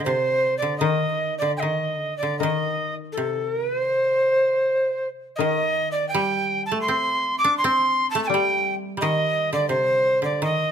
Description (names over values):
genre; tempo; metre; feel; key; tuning
japanese traditional, Japanese chamber music; 72-87 BPM; 4/4; rubato; C kumoi; A4 = 440 Hz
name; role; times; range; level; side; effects
breathy alto recorder; melody; 0.0-10.7 s; C5 to D6; -21 LUFS; right 1 dB; none
koto; second line; 0.0-10.7 s; C3 to D4; -27 LUFS; equal; none
koto; accompaniment; 0.0-10.4 s; Eb3 to C4; -30 LUFS; left 10 dB; none
room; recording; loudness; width
moderate recital hall reverb, RT60 1.7 s; close, detailed microphones; -20 LUFS; side -8 dB against mid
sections
0.0-10.7 A section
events
none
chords
none